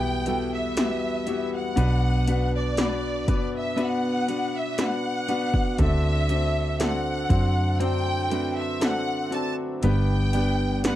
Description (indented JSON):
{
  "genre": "pop ballad",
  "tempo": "60 BPM",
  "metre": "4/4",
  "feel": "straight",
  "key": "unclear",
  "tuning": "A4 = 440 Hz",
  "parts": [
    { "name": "bright studio violin section", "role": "melody", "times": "0.0-11.0 s", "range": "D5 to A5", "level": "-29 LUFS", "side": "equal", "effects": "none" },
    { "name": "clear concert grand piano", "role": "accompaniment", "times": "0.0-11.0 s", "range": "G2 to C5", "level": "-28 LUFS", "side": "left 3 dB", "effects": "none" },
    { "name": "picked steel-string acoustic guitar", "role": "arpeggios", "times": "0.0-11.0 s", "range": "E2 to G4", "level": "-33 LUFS", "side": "right 6 dB", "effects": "none" },
    { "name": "vintage muted fingered electric bass", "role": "bass", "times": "0.0-11.0 s", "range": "G1 to F#2", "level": "-25 LUFS", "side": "equal", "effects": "none" },
    { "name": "80s electronic pad drums", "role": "drums", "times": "0.3-11.0 s", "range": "hi-hat, kick drum, snare drum", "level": "-26 LUFS", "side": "equal", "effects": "none" }
  ],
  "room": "little or no reverb",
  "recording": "dry, close 1970s-style studio recording",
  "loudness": "-22 LUFS",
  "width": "side -13 dB against mid",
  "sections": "0.0-11.0 A section",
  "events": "none",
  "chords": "0.0 Emadd9; 1.8 Bm; 5.8 D7; 9.8 G",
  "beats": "0.77 | 1.78 2.79 3.79 4.79 | 5.79 6.80 7.81 8.82 | 9.83 10.85"
}